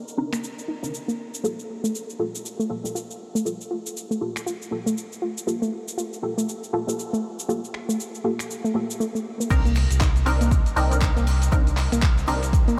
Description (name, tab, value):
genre	deep house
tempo	119 BPM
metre	4/4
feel	swing 58% on 16ths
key	C minor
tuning	A4 = 441 Hz
part	dusty soul sampler-style drum kit	drums	0.1-12.8 s	crash cymbal, finger snaps, handclaps, hi-hat, shaker	-35 LUFS	equal	studio reverb
part	filtered dub chord stab	stabs	0.2-12.8 s	Bb3 to Bb4	-32 LUFS	equal	phaser, analog chorus, vintage 12-bit sampler grit, sidechain pumping, tape echo
part	soft round pluck	arpeggios	0.3-12.8 s	A3 to F4	-31 LUFS	equal	chorus, sidechain pumping, tape echo
part	smooth gliding synth bass	bass	9.5-12.6 s	C2	-24 LUFS	equal	tube saturation, sidechain pumping
part	electronic kick drum	drums	9.5-12.6 s	none	-23 LUFS	equal	overdrive, studio reverb
part	shaker and snare drum	drums	9.5-12.7 s	none	-47 LUFS	equal	none
room	moderate huge ambient reverb, RT60 8.4 s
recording	dreamy mix soaked in reverb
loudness	-25 LUFS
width	mono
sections	0.0-9.5 A section; 9.5-12.8 B section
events	filter sweep on synth arpeggio sound 0.0-9.5; drop 9.5-12.8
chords	0.0 Cm9; 1.4 Gm9; 9.5 Cm9